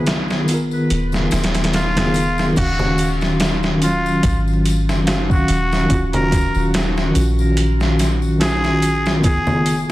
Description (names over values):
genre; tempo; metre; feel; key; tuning
trip hop; 72 BPM; 4/4; swing 55% on 16ths; Eb minor; A4 = 440 Hz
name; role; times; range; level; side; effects
mellow tine electric piano; accompaniment; 0.0-9.9 s; Eb3 to F5; -19 LUFS; equal; tremolo, tape echo
soft 808-style bass; bass; 0.0-9.8 s; Eb1 to Bb1; -21 LUFS; equal; none
trip hop sampler-style drum kit; drums; 0.1-9.9 s; crash cymbal, hi-hat, kick drum, snare drum; -20 LUFS; equal; overdrive
tambourine and congas; percussion; 0.1-9.9 s; none; -29 LUFS; left 1 dB; none
trumpet with straight mute; melody; 1.7-9.8 s; F4 to Bb4; -24 LUFS; equal; vintage 12-bit sampler grit, tape echo
room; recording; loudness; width
light reverb; dense, heavily limited modern master, vinyl crackle; -15 LUFS; side -16 dB against mid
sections
0.0-2.6 A section; 2.6-9.9 B section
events
filter sweep on tine electric piano 0.0-2.6; kick drops out 0.9-2.6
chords
0.0 Abm69; 2.6 Ebm9; 9.2 Db9/Eb (rootless)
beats
0.07 0.90 1.74 | 2.57 3.40 4.24 5.07 | 5.90 6.74 7.57 8.40 | 9.24